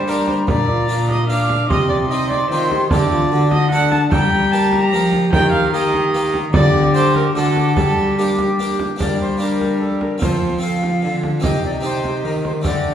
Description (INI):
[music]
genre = classical, renaissance-style consort dance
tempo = 148 BPM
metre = 3/4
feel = straight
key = G minor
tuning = A4 = 440 Hz
[part]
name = mellow alto recorder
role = melody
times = 0.0-12.9 s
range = A4 to D6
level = -24 LUFS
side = left 3 dB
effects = none
[part]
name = warm viola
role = second line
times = 0.0-12.9 s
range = G4 to Bb5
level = -22 LUFS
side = right 3 dB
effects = none
[part]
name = harpsichord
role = accompaniment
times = 0.0-12.9 s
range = Bb2 to A4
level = -24 LUFS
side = equal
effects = none
[part]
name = warm trombone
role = accompaniment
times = 0.0-12.9 s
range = D4 to G4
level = -23 LUFS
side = equal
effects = none
[part]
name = rich cello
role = bass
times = 0.0-12.9 s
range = Bb2 to G3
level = -20 LUFS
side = left 1 dB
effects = none
[part]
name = frame drum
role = percussion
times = 0.3-12.8 s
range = none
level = -23 LUFS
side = right 1 dB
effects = none
[sound]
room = wet recital hall reverb, RT60 1.5 s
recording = heard from further back in the room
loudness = -15 LUFS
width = side -9 dB against mid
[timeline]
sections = 0.0-9.0 A section; 9.0-12.9 B section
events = none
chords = 0.5 Bb; 1.7 Cm; 2.9 Dsus4; 3.3 D; 4.1 Gm; 5.3 Eb; 6.5 Dsus4; 7.4 D; 7.8 Gm; 10.2 F; 11.4 Cm